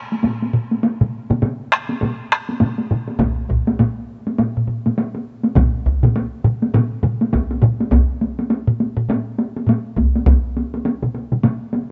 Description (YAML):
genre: japanese traditional, taiko drum ensemble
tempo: 102 BPM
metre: 4/4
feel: swing 60% on 16ths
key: none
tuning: none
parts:
  - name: taiko ensemble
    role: percussion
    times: 0.1-11.9 s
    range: none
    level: -23 LUFS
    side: equal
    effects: none
  - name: taiko ensemble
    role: percussion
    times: 0.2-9.8 s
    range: none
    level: -23 LUFS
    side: equal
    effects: none
  - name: taiko ensemble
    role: percussion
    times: 1.0-11.6 s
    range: none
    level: -21 LUFS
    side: equal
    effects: none
  - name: taiko ensemble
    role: percussion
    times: 3.2-10.4 s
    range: none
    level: -20 LUFS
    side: equal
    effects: none
room: light reverb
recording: nothing above 7.9 kHz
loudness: -19 LUFS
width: mono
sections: 0.0-7.9 A section; 7.9-11.9 B section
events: none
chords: none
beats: 0.24 | 0.83 1.42 2.02 2.61 | 3.20 3.79 4.38 4.97 | 5.56 6.15 6.74 7.33 | 7.92 8.51 9.09 9.68 | 10.26 10.85 11.43